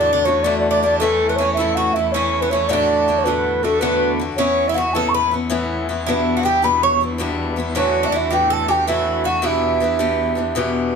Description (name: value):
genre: celtic folk, Celtic slip jig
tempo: 107 BPM (dotted quarters)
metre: 9/8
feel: straight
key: unclear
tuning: A4 = 439 Hz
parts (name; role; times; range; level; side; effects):
- mellow hollow baroque flute; melody; 0.0-10.8 s; A4 to C#6; -18 LUFS; right 1 dB; none
- Irish bouzouki; second line; 0.0-10.7 s; A3 to C#5; -22 LUFS; right 3 dB; none
- picked swing-style acoustic guitar; accompaniment; 0.0-11.0 s; D2 to G4; -22 LUFS; left 4 dB; none
- clear cello; drone; 0.0-11.0 s; E2; -28 LUFS; equal; none
room: moderate studio reverb, RT60 0.6 s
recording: none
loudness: -16 LUFS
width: side -6 dB against mid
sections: 0.0-11.0 A section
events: none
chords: 0.0 D; 1.0 A; 2.7 D; 4.4 Aadd9; 6.1 Em7; 7.8 Dadd9; 9.5 Em7